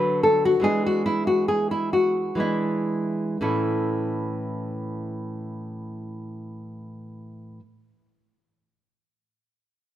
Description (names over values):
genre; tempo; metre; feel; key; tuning
classical, baroque-style dance for nylon-string guitar; 56-76 BPM; 3/4; rubato; A major; A4 = 440 Hz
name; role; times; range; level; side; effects
nylon-string guitar; solo; 0.0-7.6 s; A2 to B4; -23 LUFS; equal; none
room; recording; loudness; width
moderate recital hall reverb, RT60 1.8 s; none; -22 LUFS; side -12 dB against mid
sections
0.0-3.4 A section; 3.4-9.3 B section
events
slowing down 0.0-3.4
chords
0.0 Bm/D; 0.6 E7; 3.4 A